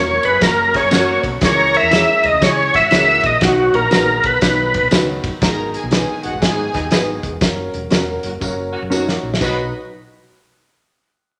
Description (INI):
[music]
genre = uptempo 1960s-style soul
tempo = 120 BPM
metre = 4/4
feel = swing 65% on 8ths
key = B major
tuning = A4 = 440 Hz
[part]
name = overdriven tonewheel organ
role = melody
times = 0.0-4.9 s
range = F#4 to E5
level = -16 LUFS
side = equal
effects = chorus vibrato, slow rotary speaker
[part]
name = mellow horn section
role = second line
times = 0.0-1.3, 6.2-9.6 s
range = D#3 to A#4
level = -29 LUFS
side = equal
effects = none
[part]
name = warm upright piano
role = accompaniment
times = 0.0-9.7 s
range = D#3 to B5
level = -27 LUFS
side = equal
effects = none
[part]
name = mellow electric guitar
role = stabs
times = 0.0-9.6 s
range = C#4 to C#5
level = -26 LUFS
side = equal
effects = none
[part]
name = woody fretless electric bass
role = bass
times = 0.0-9.7 s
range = E1 to C#3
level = -29 LUFS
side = equal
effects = none
[part]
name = natural country drum kit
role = drums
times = 0.2-9.6 s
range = crash cymbal, hi-hat, kick drum, ride cymbal, snare drum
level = -21 LUFS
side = equal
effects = none
[part]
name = tambourine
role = percussion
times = 0.4-9.7 s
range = none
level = -35 LUFS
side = equal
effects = none
[part]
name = warm chamber string section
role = second line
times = 1.4-9.7 s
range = F#4 to B5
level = -28 LUFS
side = equal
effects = none
[sound]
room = wet large studio reverb, RT60 1.1 s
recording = none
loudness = -16 LUFS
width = mono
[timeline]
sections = 0.0-5.4 A section; 5.4-9.4 B section; 9.4-11.4 C section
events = upright piano fill 4.7-5.4; drum fill 8.4-9.4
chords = 0.0 F#; 1.4 C#m; 3.4 B; 5.4 G#m; 7.4 F#; 9.4 B